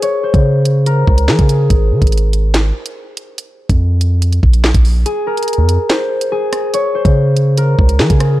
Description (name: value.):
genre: hip hop, drill.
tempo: 143 BPM.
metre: 4/4.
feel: half-time.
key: unclear.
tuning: A4 = 442 Hz.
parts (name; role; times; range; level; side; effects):
concert harp; melody; 0.0-8.4 s; Ab4 to Db5; -17 LUFS; left 2 dB; low-pass filter, analog delay.
drill drum kit; drums; 0.0-8.3 s; handclaps, hi-hat, kick drum, rim click, snare drum; -14 LUFS; equal; none.
long sustained 808-style bass; bass; 0.3-8.4 s; Ab1 to F3; -12 LUFS; equal; none.
room: digital ambience.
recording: dry, gritty hardware recording.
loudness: -11 LUFS.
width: side -16 dB against mid.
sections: 0.0-8.4 A section.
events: break 5.1-5.5.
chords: 0.0 Db5; 1.7 Ab5; 3.4 Bb5; 5.1 F5; 6.7 Db5.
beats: | 0.02 0.44 0.86 1.28 | 1.70 2.12 2.54 2.96 | 3.38 3.80 4.22 4.64 | 5.06 5.48 5.90 6.32 | 6.74 7.16 7.58 8.00.